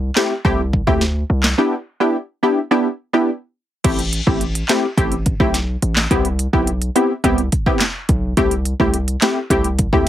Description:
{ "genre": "dancehall", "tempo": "106 BPM", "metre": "4/4", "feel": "straight", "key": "A minor", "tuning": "A4 = 440 Hz", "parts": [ { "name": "hard-hitting 808-style bass", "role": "bass", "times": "0.0-10.1 s", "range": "A1 to D2", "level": "-20 LUFS", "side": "equal", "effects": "none" }, { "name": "punchy chord stab", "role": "accompaniment", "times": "0.2-10.1 s", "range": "A3 to G4", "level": "-17 LUFS", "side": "equal", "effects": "chorus" }, { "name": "afro-pop drum kit", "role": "drums", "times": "0.2-10.1 s", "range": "crash cymbal, handclaps, hi-hat, kick drum, snare drum", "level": "-19 LUFS", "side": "equal", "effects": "none" } ], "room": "little or no reverb", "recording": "heavily compressed radio sound, multiband compression", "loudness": "-16 LUFS", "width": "side -12 dB against mid", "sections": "0.0-3.8 A section; 3.8-10.1 B section", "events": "break 1.6-3.8", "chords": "0.0 Am7/C; 1.6 Em7; 3.8 Am7; 6.1 Cmaj7; 8.4 Am7/C" }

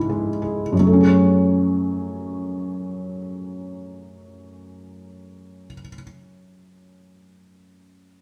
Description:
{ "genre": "classical", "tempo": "48 BPM", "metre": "4/4", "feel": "rubato", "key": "F# minor", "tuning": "A4 = 440 Hz", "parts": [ { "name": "felt-muted upright piano", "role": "accompaniment", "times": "0.0-8.2 s", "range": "F#2 to C#5", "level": "-21 LUFS", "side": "equal", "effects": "none" } ], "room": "wet stone room reverb, RT60 1.2 s", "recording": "band playing live in one room", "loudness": "-20 LUFS", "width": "mono", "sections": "0.7-5.7 A section", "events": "none", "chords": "0.0 C#m; 0.7 F#madd9" }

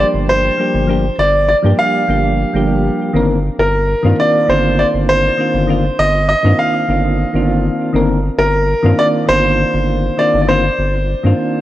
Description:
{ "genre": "sunset chillout", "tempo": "100 BPM", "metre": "4/4", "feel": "straight", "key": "C minor", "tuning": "A4 = 442 Hz", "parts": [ { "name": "bright grand piano", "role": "melody", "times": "0.0-11.6 s", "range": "Bb4 to F5", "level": "-15 LUFS", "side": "equal", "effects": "tape echo" }, { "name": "soft electric-piano-like synth keys", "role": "accompaniment", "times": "0.0-11.6 s", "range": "Eb3 to Bb4", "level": "-17 LUFS", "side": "equal", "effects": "chorus, tremolo, auto-pan" }, { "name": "round analog bass", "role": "bass", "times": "0.0-11.3 s", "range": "G1 to G2", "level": "-16 LUFS", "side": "equal", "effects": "none" } ], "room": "moderate plate reverb, RT60 2.5 s", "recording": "worn, warbling old tape, cassette tape, warbly pitch drift", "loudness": "-12 LUFS", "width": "side -14 dB against mid", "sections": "0.0-11.6 A section", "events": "none", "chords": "0.0 Cm11/G" }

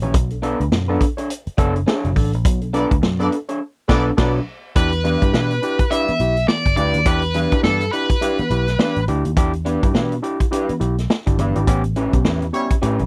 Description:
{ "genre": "funk", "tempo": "104 BPM", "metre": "4/4", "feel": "swing 60% on 16ths", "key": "E dorian", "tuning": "A4 = 436 Hz", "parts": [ { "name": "electric guitar through a small old amp", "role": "accompaniment", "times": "0.0-13.0 s", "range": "C#4 to C#5", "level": "-25 LUFS", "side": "equal", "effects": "none" }, { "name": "overdriven tine electric piano", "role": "stabs", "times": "0.0-13.1 s", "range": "A2 to A4", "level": "-27 LUFS", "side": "equal", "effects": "none" }, { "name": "vintage muted picked electric bass", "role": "bass", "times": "0.0-13.1 s", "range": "F#1 to B2", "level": "-24 LUFS", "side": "equal", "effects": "none" }, { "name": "vintage drum kit", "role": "drums", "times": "0.0-13.1 s", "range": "crash cymbal, hi-hat, kick drum, snare drum", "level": "-22 LUFS", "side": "equal", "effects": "none" }, { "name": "warm horn section", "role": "second line", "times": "2.7-4.3, 12.5-12.7 s", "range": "G3 to D5", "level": "-26 LUFS", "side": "equal", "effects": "none" }, { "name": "nasal lead guitar with a parked wah", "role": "melody", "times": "4.8-9.0 s", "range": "A4 to E5", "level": "-23 LUFS", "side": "equal", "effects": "overdrive, tube saturation" } ], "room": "little or no reverb", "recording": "dry, close 1970s-style studio recording", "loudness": "-19 LUFS", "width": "mono", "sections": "0.0-4.8 A section; 4.8-13.1 B section", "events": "band accent 2.4-4.8, 11.7-13.1", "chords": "0.1 Bm7; 4.8 Em7; 11.7 A9" }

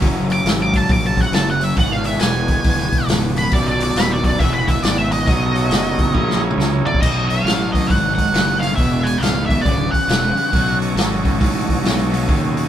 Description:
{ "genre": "blues rock power trio and southern rock", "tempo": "137 BPM", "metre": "4/4", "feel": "swing 64% on 8ths", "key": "B mixolydian", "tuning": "A4 = 440 Hz", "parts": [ { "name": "overdriven tonewheel organ", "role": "sustained chords", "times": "0.0-12.7 s", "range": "C#4 to D#5", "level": "-28 LUFS", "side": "right 4 dB", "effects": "none" }, { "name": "overdriven electric guitar", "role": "riff", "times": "0.0-12.7 s", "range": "B1 to F#3", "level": "-22 LUFS", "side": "left 1 dB", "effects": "none" }, { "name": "fuzz fingered electric bass", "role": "bass", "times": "0.0-12.7 s", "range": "B0 to D#2", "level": "-22 LUFS", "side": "equal", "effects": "overdrive" }, { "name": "vintage drum kit", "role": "drums", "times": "0.0-12.6 s", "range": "crash cymbal, hi-hat, kick drum, snare drum, toms", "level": "-19 LUFS", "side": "equal", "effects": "none" }, { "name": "octave-fuzz lead guitar", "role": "melody", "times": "0.3-10.8 s", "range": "D5 to D6", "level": "-21 LUFS", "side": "right 1 dB", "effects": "wah, distortion" } ], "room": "moderate studio reverb, RT60 0.7 s", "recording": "band playing live in one room", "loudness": "-15 LUFS", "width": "side -10 dB against mid", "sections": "0.0-7.0 A section; 7.0-12.7 B section", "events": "lead electric guitar solo 0.0-7.0; drum fill 6.1-7.0", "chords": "0.0 F#7; 1.8 E7; 3.5 B7; 4.4 E7; 5.3 B7; 6.1 F#7; 7.0 B7; 8.8 E7; 10.5 B7" }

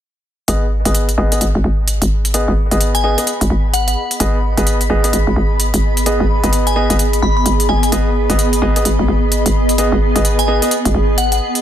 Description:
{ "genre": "bass house", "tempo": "129 BPM", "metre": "4/4", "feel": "swing 61% on 16ths", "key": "G# minor", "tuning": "A4 = 439 Hz", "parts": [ { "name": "warm grand piano", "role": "stabs", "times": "0.5-10.7 s", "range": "B3 to D#5", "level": "-21 LUFS", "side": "equal", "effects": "low-pass filter, dub echo" }, { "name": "hollow knocking FM bass", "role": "bass", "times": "0.5-11.4 s", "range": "G#1", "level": "-15 LUFS", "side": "equal", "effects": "tube saturation" }, { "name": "electronic hi-hat", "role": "drums", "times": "0.5-11.6 s", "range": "none", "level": "-21 LUFS", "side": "equal", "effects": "none" }, { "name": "granular cloud pad", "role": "texture", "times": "2.0-11.6 s", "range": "B3 to B5", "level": "-20 LUFS", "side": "right 1 dB", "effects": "built-in reverb" }, { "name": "glassy synth bell", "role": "melody", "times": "2.9-11.4 s", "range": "F#5 to B5", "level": "-21 LUFS", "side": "left 2 dB", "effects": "chorus, phaser, dub echo" } ], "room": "digital ambience", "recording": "dense, heavily limited modern master", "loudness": "-13 LUFS", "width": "side -10 dB against mid", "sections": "0.5-11.6 A section", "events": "filter sweep on grand piano 0.5-11.6", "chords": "0.5 G#m" }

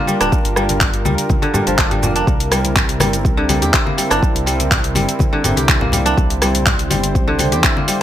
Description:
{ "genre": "afro house", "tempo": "123 BPM", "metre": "4/4", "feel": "straight", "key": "unclear", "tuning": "A4 = 442 Hz", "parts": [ { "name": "warm analog pad", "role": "sustained chords", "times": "0.0-8.0 s", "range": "G3 to C5", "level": "-23 LUFS", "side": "right 1 dB", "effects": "chorus, sidechain pumping" }, { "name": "kora", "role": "arpeggios", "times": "0.0-8.0 s", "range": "D3 to G4", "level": "-19 LUFS", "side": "equal", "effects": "sidechain pumping, tape echo" }, { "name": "deep house drum kit", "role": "drums", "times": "0.1-8.0 s", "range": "handclaps, hi-hat, rim click, shaker", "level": "-19 LUFS", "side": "equal", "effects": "overdrive" }, { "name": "dark detuned saw bass", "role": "bass", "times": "0.2-7.6 s", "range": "D1 to E2", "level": "-21 LUFS", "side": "equal", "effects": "sidechain pumping" }, { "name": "electronic kick drum", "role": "drums", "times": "0.3-7.7 s", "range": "none", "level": "-17 LUFS", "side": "equal", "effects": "overdrive" }, { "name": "congas", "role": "percussion", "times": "0.7-7.9 s", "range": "none", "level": "-23 LUFS", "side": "left 2 dB", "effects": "none" } ], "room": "light reverb", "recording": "none", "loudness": "-13 LUFS", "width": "side -11 dB against mid", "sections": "0.0-8.0 A section", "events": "none", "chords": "0.0 Gm7; 2.3 C7" }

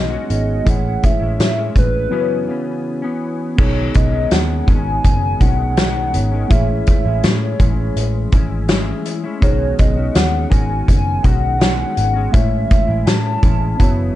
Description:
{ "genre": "indie pop, bedroom pop", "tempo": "82 BPM", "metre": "4/4", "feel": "straight", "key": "B mixolydian", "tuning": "A4 = 443 Hz", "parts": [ { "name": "warbly nostalgic lead", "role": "melody", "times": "0.0-14.2 s", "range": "B4 to A5", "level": "-22 LUFS", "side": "left 1 dB", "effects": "analog chorus, slapback echo" }, { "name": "mellow tine electric piano", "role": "accompaniment", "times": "0.0-14.2 s", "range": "G#3 to C#5", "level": "-25 LUFS", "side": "right 3 dB", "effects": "cassette tape" }, { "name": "semi-hollow electric guitar", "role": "accompaniment", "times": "0.0-14.2 s", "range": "F#2 to F#4", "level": "-25 LUFS", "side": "left 4 dB", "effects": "analog chorus, warbly pitch drift" }, { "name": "vintage muted picked electric bass", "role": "bass", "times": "0.0-14.1 s", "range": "F#1 to A2", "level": "-19 LUFS", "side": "equal", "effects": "none" }, { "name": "loose indie drum kit", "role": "drums", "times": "0.3-14.0 s", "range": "crash cymbal, hi-hat, kick drum, snare drum", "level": "-16 LUFS", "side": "equal", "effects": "none" } ], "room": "light reverb", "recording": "dark, warm production, nothing above 10.4 kHz", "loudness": "-14 LUFS", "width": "side -14 dB against mid", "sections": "0.0-3.6 A section; 3.6-14.2 B section", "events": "break 2.1-3.6", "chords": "0.0 B69; 0.7 Amaj7; 2.1 F#7sus4; 3.6 B69; 6.5 Amaj7; 9.4 B69; 12.3 Amaj7" }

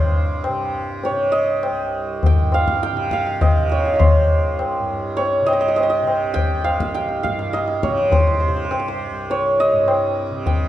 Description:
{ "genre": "indian classical, Hindustani", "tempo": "102 BPM", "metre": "7/4", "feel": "straight", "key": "C raga bhairavi", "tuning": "A4 = 440 Hz", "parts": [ { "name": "santur", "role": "melody", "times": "0.0-10.7 s", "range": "C5 to Bb5", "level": "-19 LUFS", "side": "right 1 dB", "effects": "none" }, { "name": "tanpura", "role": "drone", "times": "0.0-10.7 s", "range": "C2 to C3", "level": "-27 LUFS", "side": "right 2 dB", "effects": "none" }, { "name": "tabla", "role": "percussion", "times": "0.4-10.7 s", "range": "none", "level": "-20 LUFS", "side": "left 2 dB", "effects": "none" } ], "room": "wet recital hall reverb, RT60 1.4 s", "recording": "dark, warm production", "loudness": "-17 LUFS", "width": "side -13 dB against mid", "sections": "0.0-10.7 A section", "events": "none", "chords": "none" }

